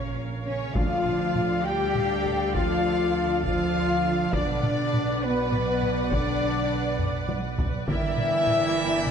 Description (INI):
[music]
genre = cinematic, epic orchestral film score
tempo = 67 BPM (dotted quarters)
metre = 12/8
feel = straight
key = unclear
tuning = A4 = 440 Hz
[part]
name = warm symphonic violin section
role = melody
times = 0.0-9.1 s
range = B4 to G5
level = -36 LUFS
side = left 4 dB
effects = none
[part]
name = mellow hollow concert flute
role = second line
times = 0.0-9.1 s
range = B4 to G5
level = -33 LUFS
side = left 2 dB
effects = none
[part]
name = warm symphonic violin section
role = second line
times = 0.0-9.1 s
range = D5 to G5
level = -38 LUFS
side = left 3 dB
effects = none
[part]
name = rich symphonic viola section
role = accompaniment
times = 0.0-9.1 s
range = A4 to D5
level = -36 LUFS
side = right 2 dB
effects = none
[part]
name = bright trombone section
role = sustained chords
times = 0.0-9.1 s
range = B2 to G3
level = -32 LUFS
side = right 5 dB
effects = none
[part]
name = mellow French horn section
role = sustained chords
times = 0.0-9.1 s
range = B3 to G4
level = -29 LUFS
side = left 7 dB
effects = none
[part]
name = bright trumpet section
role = stabs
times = 0.0-9.1 s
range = B4 to G5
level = -31 LUFS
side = equal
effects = none
[part]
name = warm symphonic cello section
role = bass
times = 0.0-9.1 s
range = B3 to G4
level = -33 LUFS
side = right 2 dB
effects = none
[part]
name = warm symphonic double bass section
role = bass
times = 0.0-9.1 s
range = G1 to D2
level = -31 LUFS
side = right 4 dB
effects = none
[part]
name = taiko ensemble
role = drums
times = 0.8-9.1 s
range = none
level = -30 LUFS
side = equal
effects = none
[part]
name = timpani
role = percussion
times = 0.8-1.6 s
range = D3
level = -35 LUFS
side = right 2 dB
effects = none
[sound]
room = moderate scoring stage reverb, RT60 1.7 s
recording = nothing above 10.7 kHz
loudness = -22 LUFS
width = side -7 dB against mid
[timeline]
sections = 0.0-9.1 A section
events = drum fill 7.0-7.9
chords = 0.0 Bbm; 0.8 Dm; 4.3 Bm; 7.9 Gm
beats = | 0.76 1.66 2.55 3.44 | 4.34 5.23 6.12 7.00 | 7.89 8.78